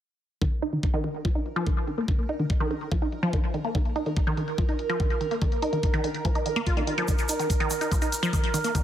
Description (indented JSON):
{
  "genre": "psychedelic trance",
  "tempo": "144 BPM",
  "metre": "4/4",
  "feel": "straight",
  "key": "unclear",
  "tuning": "A4 = 440 Hz",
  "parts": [
    { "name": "overtone-sweeping drone", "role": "sustained chords", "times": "1.1-8.8 s", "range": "Bb4", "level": "-33 LUFS", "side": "right 4 dB", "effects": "chorus, built-in reverb, sidechain pumping" },
    { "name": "wide unison pluck", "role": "riff", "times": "0.4-8.8 s", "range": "Eb3 to F4", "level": "-28 LUFS", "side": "equal", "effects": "auto-pan, sidechain pumping, digital delay" },
    { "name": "electronic hi-hat", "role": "drums", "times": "0.4-8.8 s", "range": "none", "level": "-39 LUFS", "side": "left 2 dB", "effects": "low-pass filter on hats, small room ambience" },
    { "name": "electronic kick drum", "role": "drums", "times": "0.4-8.8 s", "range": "none", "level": "-26 LUFS", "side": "equal", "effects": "small room ambience" },
    { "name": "tube shaker", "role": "percussion", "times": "7.1-8.8 s", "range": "none", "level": "-34 LUFS", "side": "right 2 dB", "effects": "none" }
  ],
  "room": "moderate digital room reverb, RT60 0.9 s",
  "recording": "heavily compressed radio sound",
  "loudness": "-24 LUFS",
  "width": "side -11 dB against mid",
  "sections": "0.4-8.8 A section",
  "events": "filter sweep on drum 0.4-8.8; filter sweep on synth arpeggio sound 0.4-8.8",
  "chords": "0.4 Eb5",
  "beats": "| 0.42 0.83 1.25 1.67 | 2.08 2.50 2.92 3.33 | 3.75 4.17 4.58 5.00 | 5.42 5.83 6.25 6.67 | 7.08 7.50 7.92 8.33 | 8.75"
}